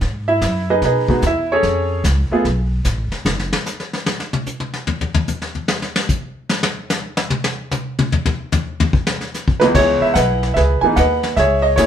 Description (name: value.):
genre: jazz piano trio.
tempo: 148 BPM.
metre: 4/4.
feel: swing 66% on 8ths.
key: C# minor.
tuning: A4 = 439 Hz.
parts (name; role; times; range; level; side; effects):
upright bass; bass; 0.0-3.5, 9.7-11.9 s; F#1 to B2; -19 LUFS; equal; none.
vintage brush drum kit; drums; 0.0-11.9 s; brushed snare drum, crash cymbal, hi-hat, kick drum, snare drum, toms; -19 LUFS; left 2 dB; none.
clear baby grand piano; melody; 0.3-2.4, 9.6-11.9 s; C#2 to G#5; -15 LUFS; right 1 dB; none.
room: moderate studio reverb, RT60 0.7 s.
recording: band playing live in one room.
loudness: -16 LUFS.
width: side -9 dB against mid.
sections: 0.0-9.7 A section; 9.7-11.9 B section.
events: grand piano solo 0.0-9.7; drum solo 3.3-9.7.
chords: 0.0 G#m7; 1.6 C#7b13; 3.3 N.C.; 9.7 C#m9.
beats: | 0.01 0.42 0.82 1.23 | 1.64 2.04 2.45 2.85 | 3.26 3.66 4.07 4.47 | 4.88 5.28 5.69 6.09 | 6.50 6.90 7.31 7.71 | 8.12 8.53 8.93 9.34 | 9.74 10.15 10.55 10.96 | 11.37 11.77.